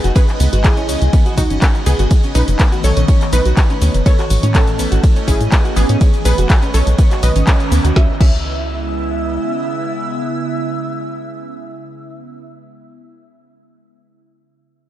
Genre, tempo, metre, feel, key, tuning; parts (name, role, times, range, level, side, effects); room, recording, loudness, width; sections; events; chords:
progressive house; 123 BPM; 4/4; straight; C# minor; A4 = 441 Hz
wide unison pluck; melody; 0.0-12.5 s; B3 to E5; -24 LUFS; equal; sidechain pumping, dub echo
airy dreamy lead; second line; 0.0-12.5 s; F#4 to E5; -28 LUFS; left 1 dB; chorus, sidechain pumping, dub echo
evolving wavetable pad; sustained chords; 0.0-12.2 s; C#3 to E4; -24 LUFS; right 2 dB; chorus, built-in reverb, phaser, sidechain pumping
glassy wavetable pluck; arpeggios; 0.0-8.3 s; B3 to F#5; -25 LUFS; right 1 dB; chorus, sidechain pumping, dub echo
tight sequencer bass; bass; 0.0-9.4 s; F#1 to A2; -15 LUFS; equal; sidechain pumping
deep house drum kit; drums; 0.0-8.4 s; crash cymbal, handclaps, hi-hat, ride cymbal, shaker, snare drum; -23 LUFS; left 1 dB; sidechain pumping on hats, sidechain pumping on cymbals, sidechain pumping on perc
backwards swelling texture; texture; 0.0-8.0 s; D#5; -31 LUFS; right 1 dB; built-in reverb, sidechain pumping
electronic kick drum; drums; 0.2-8.4 s; -12 LUFS; equal
little or no reverb; dark, warm production; -12 LUFS; side -13 dB against mid
0.0-8.0 A section; 8.0-11.9 B section
drop 0.0-8.0; band accent 7.5
0.2 C#m7; 2.1 B7; 4.1 A; 6.0 G#m; 7.0 Badd9; 8.0 C#m7